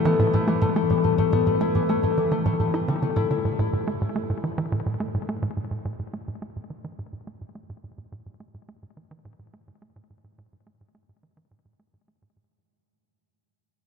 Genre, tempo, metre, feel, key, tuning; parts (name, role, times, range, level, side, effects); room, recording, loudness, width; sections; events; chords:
ambient, sequencer-driven space music; 106 BPM; 4/4; straight; A4 = 444 Hz
concert harp; arpeggios; 0.0-6.8 s; E3 to E4; -24 LUFS; moving between left 7 dB and right 1 dB; auto-pan, ping-pong delay
tight sequencer bass; riff; 0.1-12.4 s; A2 to E4; -26 LUFS; right 1 dB; ping-pong delay
wet huge ambient reverb, RT60 7.0 s; -22 LUFS; side -6 dB against mid
0.0-12.5 A section
fade-out 0.0-12.5; filter sweep on analog synth bass 0.0-12.5
0.0 A5